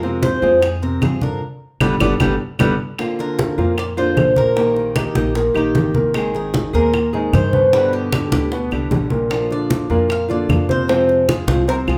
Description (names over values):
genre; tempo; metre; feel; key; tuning
latin, Cuban son and guajira; 152 BPM; 4/4; straight; unclear; A4 = 439 Hz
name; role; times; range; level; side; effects
Cuban tres; melody; 0.0-12.0 s; G4 to F5; -22 LUFS; equal; none
nylon-string guitar; accompaniment; 0.0-12.0 s; B2 to Ab4; -26 LUFS; equal; none
warm concert grand piano; arpeggios; 0.0-12.0 s; Bb2 to C5; -23 LUFS; equal; none
upright bass; bass; 0.0-12.0 s; G1 to G2; -26 LUFS; equal; none
bongos; percussion; 0.0-12.0 s; none; -30 LUFS; equal; none
congas; percussion; 0.0-12.0 s; none; -24 LUFS; equal; none
claves; percussion; 0.6-12.0 s; none; -30 LUFS; equal; none
room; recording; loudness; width
moderate large studio reverb, RT60 0.9 s; band playing live in one room; -17 LUFS; mono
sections
0.0-3.0 A section; 3.0-12.0 B section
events
band accent 1.4-3.0; drum fill 2.4-3.0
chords
0.0 Fm; 1.4 G; 3.0 Bbadd9; 4.6 Eb/Bb; 6.2 Abadd9; 7.7 G; 9.3 Bb; 10.9 Fm